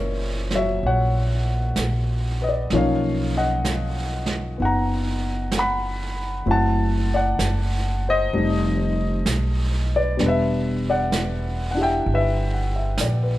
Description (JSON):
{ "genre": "jazz ballad", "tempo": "64 BPM", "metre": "4/4", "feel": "swing 67% on 8ths", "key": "unclear", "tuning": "A4 = 443 Hz", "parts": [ { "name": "warm baby grand piano", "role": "accompaniment", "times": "0.0-13.4 s", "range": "A#2 to B5", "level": "-23 LUFS", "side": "left 2 dB", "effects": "none" }, { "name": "upright bass", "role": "bass", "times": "0.0-13.4 s", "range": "E1 to B1", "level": "-23 LUFS", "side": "equal", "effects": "none" }, { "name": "vintage brush drum kit", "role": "drums", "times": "0.5-13.4 s", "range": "brushed snare drum, hi-hat, snare drum", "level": "-30 LUFS", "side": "right 3 dB", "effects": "none" } ], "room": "light reverb", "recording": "none", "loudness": "-20 LUFS", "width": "side -15 dB against mid", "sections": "0.0-13.4 A section", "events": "none", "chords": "0.0 F#7; 2.7 Bmaj9#11; 6.5 F#m7b5; 8.3 F9; 10.2 Em9" }